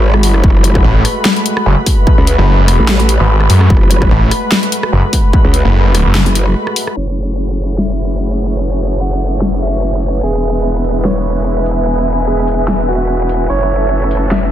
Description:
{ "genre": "heavy wobble dubstep", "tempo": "147 BPM", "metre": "4/4", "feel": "swing 55% on 16ths, half-time", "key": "F# minor", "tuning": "A4 = 439 Hz", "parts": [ { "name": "supersaw pad", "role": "sustained chords", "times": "0.0-14.5 s", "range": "G#3 to C#5", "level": "-20 LUFS", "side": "equal", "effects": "sidechain pumping, low-pass filter" }, { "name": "growl bass", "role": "bass", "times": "0.0-14.5 s", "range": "E1 to C#2", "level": "-14 LUFS", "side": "equal", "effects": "chorus, overdrive" }, { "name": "ethereal airy pad", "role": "texture", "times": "0.0-14.5 s", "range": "B4 to B5", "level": "-21 LUFS", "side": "right 1 dB", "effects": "ensemble chorus, built-in reverb, sidechain pumping" }, { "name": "dubstep drum kit", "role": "drums", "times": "0.1-14.4 s", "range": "handclaps, hi-hat, rim click, snare drum", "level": "-16 LUFS", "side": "left 2 dB", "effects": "none" }, { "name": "electronic kick drum", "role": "drums", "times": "0.4-5.4 s", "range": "none", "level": "-11 LUFS", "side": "equal", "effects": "distortion" }, { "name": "snarling distorted saw bass", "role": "bass", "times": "0.8-6.2 s", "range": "F#1 to F#2", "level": "-9 LUFS", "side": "equal", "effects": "distortion, overdrive" }, { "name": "dark grand piano", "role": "melody", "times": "7.0-14.5 s", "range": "F#4 to F#5", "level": "-22 LUFS", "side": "right 2 dB", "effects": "tape echo" }, { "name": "downlifter", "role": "sound effects", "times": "7.3-10.2 s", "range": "none", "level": "-38 LUFS", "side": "equal", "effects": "none" } ], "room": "little or no reverb", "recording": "dense, heavily limited modern master, low-pass filter", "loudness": "-10 LUFS", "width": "side -12 dB against mid", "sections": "0.0-7.0 A section; 7.0-14.5 B section", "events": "drop 0.0-7.0; break 6.2-7.0; filter sweep on supersaw synth 7.0-14.5; filter sweep 7.0-14.5", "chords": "0.0 F#madd9; 10.2 E; 13.5 F#m", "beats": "0.03 | 0.44 0.84 1.25 1.66 | 2.07 2.48 2.88 3.29 | 3.70 4.11 4.52 4.93 | 5.33 5.74 6.15 6.56 | 6.97 7.38 7.78 8.19 | 8.60 9.01 9.42 9.82 | 10.23 10.64 11.05 11.46 | 11.87 12.27 12.68 13.09 | 13.50 13.91 14.31" }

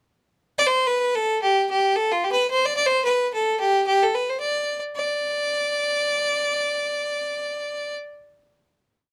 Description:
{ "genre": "celtic folk, Celtic reel", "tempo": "218 BPM", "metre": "4/4", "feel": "swing 57% on 8ths", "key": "unclear", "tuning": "A4 = 440 Hz", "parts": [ { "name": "bright fiddle", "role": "solo", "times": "0.6-7.9 s", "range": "F4 to D5", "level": "-23 LUFS", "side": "equal", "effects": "none" } ], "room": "light reverb", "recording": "dark, warm production", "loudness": "-23 LUFS", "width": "mono", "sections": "0.6-5.0 A section; 5.0-7.2 final note", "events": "none", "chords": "none", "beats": "| 0.57 0.84 1.12 1.39 | 1.67 1.94 2.21 2.49 | 2.76 3.03 3.31 3.58 | 3.86 4.13 4.41 4.68 | 4.96 5.24 5.52 5.79 | 6.07 6.35 6.63 6.91" }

